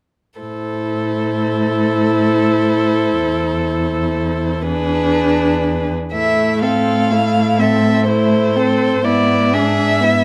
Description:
classical, slow romantic movement for string quartet; 42 BPM (dotted quarters); 6/8; uneven beats, rubato; A minor; A4 = 439 Hz
warm violin; melody; 0.4-10.2 s; B4 to F5; -22 LUFS; equal
rich violin; second line; 0.4-10.2 s; E4 to A4; -25 LUFS; equal
warm viola; accompaniment; 0.4-10.2 s; A3 to E4; -21 LUFS; equal
warm cello; bass; 0.4-10.2 s; E2 to A2; -22 LUFS; equal
moderate recital hall reverb, RT60 1.8 s; close, detailed microphones; -16 LUFS; mono
0.4-6.1 A section; 6.1-10.2 B section
0.4 Am; 3.2 E7; 6.1 Am; 9.0 E7/G#
| 0.40 1.83 | 3.23 4.62 | 6.14 7.61 | 9.05

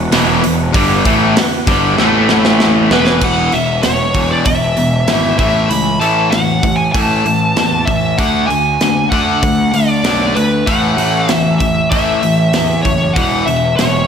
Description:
hard rock; 96 BPM; 4/4; straight; A4 = 438 Hz
overdriven tonewheel organ; sustained chords; 0.0-3.2 s; E3 to B4; -23 LUFS; right 1 dB
cranked stack guitar; riff; 0.0-14.1 s; E2 to D4; -18 LUFS; left 9 dB; overdrive
distorted electric guitar; riff; 0.0-3.2 s; E2 to A3; -18 LUFS; right 1 dB; distortion
overdriven semi-hollow guitar; riff; 0.0-14.1 s; E2 to D4; -20 LUFS; right 9 dB
fuzz picked electric bass; bass; 0.0-14.1 s; E1 to E2; -19 LUFS; equal; overdrive
tight metal drum kit; drums; 0.1-13.9 s; crash cymbal, hi-hat, kick drum, snare drum; -18 LUFS; right 1 dB
high-gain lead guitar; melody; 2.9-14.1 s; B4 to B5; -16 LUFS; equal; distortion, slapback echo
moderate lush hall reverb, RT60 1.9 s, small room ambience; big arena sound; -11 LUFS; side -7 dB against mid
0.0-3.2 A section; 3.2-14.1 B section
drum fill 2.0-3.2
0.0 E5; 2.0 A5; 2.9 E5; 3.2 E; 5.4 A5; 8.2 D; 10.7 A5; 13.2 E5
0.12 | 0.74 1.36 1.98 2.60 | 3.22 3.84 4.46 5.08 | 5.70 6.33 6.95 7.57 | 8.19 8.81 9.44 10.06 | 10.68 11.30 11.93 12.55 | 13.17 13.80

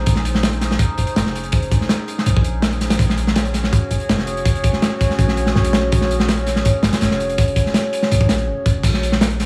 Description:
drum and bass, jungle; 164 BPM; 4/4; straight; A4 = 440 Hz
warbly tape-like pad; sustained chords; 0.0-9.5 s; Db4 to Db5; -26 LUFS; equal; chorus, built-in reverb
warm 808-style bass; bass; 0.0-9.5 s; F1 to Bb1; -23 LUFS; equal
crunchy breakbeat drum kit; drums; 0.1-9.5 s; crash cymbal, hi-hat, kick drum, snare drum; -20 LUFS; equal
light reverb, small room reverb; studio ambience; -18 LUFS; mono
0.0-8.8 A section
drop 0.0-8.8
0.0 Bbm11; 3.0 Gbsus2; 8.8 Bbm11
| 0.07 0.43 0.80 1.16 | 1.53 1.90 2.26 2.63 | 2.99 3.36 3.73 4.09 | 4.46 4.82 5.19 5.55 | 5.92 6.29 6.65 7.02 | 7.38 7.75 8.12 8.48 | 8.85 9.21

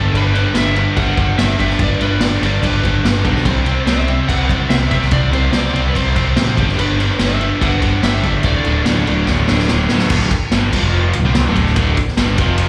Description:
garage rock duo or trio; 144 BPM; 4/4; straight; A4 = 442 Hz
electric slide guitar; melody; 0.0-9.7 s; G4 to F#5; -26 LUFS; equal; slapback echo
overdriven electric guitar; riff; 0.0-12.7 s; D2 to C4; -20 LUFS; equal; slapback echo
growling picked electric bass; bass; 0.0-12.7 s; D1 to C2; -20 LUFS; equal; overdrive
vintage drum kit; drums; 0.1-12.7 s; crash cymbal, kick drum, ride cymbal, snare drum; -21 LUFS; equal
little or no reverb; live gig heard through the venue's PA, club reverb; -15 LUFS; mono
0.0-10.1 A section; 10.1-12.7 B section
drum fill 9.3-10.1
0.0 G; 3.5 C5; 6.6 G; 8.4 D5; 10.7 F5; 11.1 D5
| 0.14 0.55 0.97 1.39 | 1.80 2.22 2.63 3.05 | 3.46 3.88 4.29 4.71 | 5.12 5.54 5.95 6.37 | 6.79 7.20 7.62 8.03 | 8.45 8.86 9.28 9.69 | 10.11 10.52 10.94 11.35 | 11.77 12.18 12.59

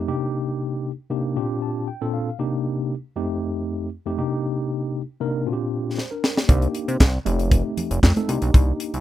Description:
early-eighties boogie funk; 117 BPM; 4/4; straight; C dorian; A4 = 438 Hz
mellow tine electric piano; accompaniment; 0.0-9.0 s; F2 to A5; -24 LUFS; left 1 dB; medium stereo tremolo
tight funk drum kit; drums; 6.0-9.0 s; handclaps, hi-hat, kick drum, snare drum; -18 LUFS; equal
chorused synth bass; bass; 6.5-9.0 s; F1 to C3; -21 LUFS; equal
congas; percussion; 6.5-8.7 s; -29 LUFS; right 2 dB
little or no reverb; rough home demo mix; -21 LUFS; side -13 dB against mid
0.0-9.0 A section
tine electric piano fill 1.4-2.4; drum fill 6.0-6.5
0.1 Cm9; 1.4 Bb6; 2.4 Cm9; 3.2 F9; 4.2 Cm9; 5.5 Bb6; 6.5 Cm9; 7.3 F9; 8.3 Cm9
| 0.34 0.85 1.36 1.88 | 2.39 2.90 3.42 3.93 | 4.44 4.95 5.47 5.98 | 6.49 7.00 7.52 8.03 | 8.54

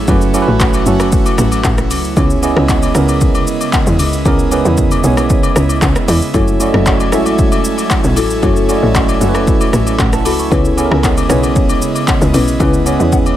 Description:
amapiano; 115 BPM; 4/4; straight; F# dorian; A4 = 440 Hz
tine electric piano; accompaniment; 0.0-13.4 s; G#3 to C#6; -16 LUFS; right 5 dB
airy breathy pad; sustained chords; 0.0-13.4 s; C#3 to G#5; -20 LUFS; equal; chorus
tight log drum bass; bass; 0.0-13.4 s; F#1 to E2; -16 LUFS; left 1 dB
deep house drum kit; drums; 0.1-13.4 s; handclaps, hi-hat, kick drum, rim click, shaker; -15 LUFS; left 1 dB; overdrive
agogo bells and woodblock; percussion; 0.1-13.4 s; -23 LUFS; left 8 dB
buzzing marimba with medium mallets; stabs; 6.3-13.1 s; C#4 to B4; -20 LUFS; left 6 dB; digital delay
little or no reverb; -10 LUFS; side -12 dB against mid
0.0-13.4 A section
0.0 F#m7; 2.2 C#m7; 6.3 F#m7; 10.5 C#m7
| 0.08 0.60 1.12 1.65 | 2.17 2.69 3.21 3.73 | 4.25 4.78 5.30 5.82 | 6.34 6.86 7.38 7.91 | 8.43 8.95 9.47 9.99 | 10.52 11.04 11.56 12.08 | 12.60 13.12

